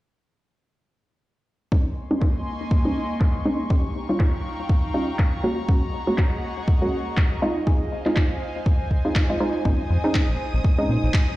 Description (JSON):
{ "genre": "deep house", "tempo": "121 BPM", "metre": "4/4", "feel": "swing 57% on 16ths", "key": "Bb minor", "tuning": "A4 = 440 Hz", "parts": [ { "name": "airy breathy pad", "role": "sustained chords", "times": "2.0-11.4 s", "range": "Bb3 to Db6", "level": "-32 LUFS", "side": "equal", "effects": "chorus, vintage 12-bit sampler grit, sidechain pumping" }, { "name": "filtered dub chord stab", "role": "stabs", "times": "1.7-11.4 s", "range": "G3 to Ab4", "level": "-25 LUFS", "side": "equal", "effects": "chorus, sidechain pumping, ping-pong delay" }, { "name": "electronic kick drum", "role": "drums", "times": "1.7-11.3 s", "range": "none", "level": "-20 LUFS", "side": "equal", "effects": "none" }, { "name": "electronic handclaps", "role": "drums", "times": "2.2-11.3 s", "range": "none", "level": "-32 LUFS", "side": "equal", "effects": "low-pass filter on snare" }, { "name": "round analog bass", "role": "bass", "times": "9.7-11.1 s", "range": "Bb1 to Bb2", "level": "-21 LUFS", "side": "equal", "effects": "tube saturation, sidechain pumping" }, { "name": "string machine, violins", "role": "texture", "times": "9.7-11.4 s", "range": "Eb6", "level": "-36 LUFS", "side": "equal", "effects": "ensemble chorus, sidechain pumping" } ], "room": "light reverb, digital ambience", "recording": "played on a big sound system in a bare room, stone room reverb", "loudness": "-20 LUFS", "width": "side -17 dB against mid", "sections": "1.7-11.4 A section", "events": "filter sweep on drum 1.7-11.4; filter sweep on synth stab 1.7-11.4", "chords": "1.7 Bbm11; 3.7 Eb9; 5.4 Ab9sus4; 7.4 Fm7; 9.7 Bbm11" }